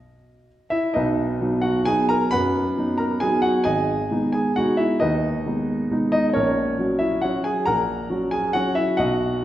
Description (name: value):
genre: classical, piano waltz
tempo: 134 BPM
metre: 3/4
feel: uneven beats, rubato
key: B major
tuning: A4 = 439 Hz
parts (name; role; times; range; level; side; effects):
- warm grand piano; solo; 0.0-9.4 s; G#1 to B5; -19 LUFS; equal; none
room: wet recital hall reverb, RT60 1.6 s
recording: heard from further back in the room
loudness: -19 LUFS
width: side -13 dB against mid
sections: 1.0-9.4 A section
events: none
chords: 0.0 N.C.; 1.0 B; 3.7 G#m; 6.4 F#/A#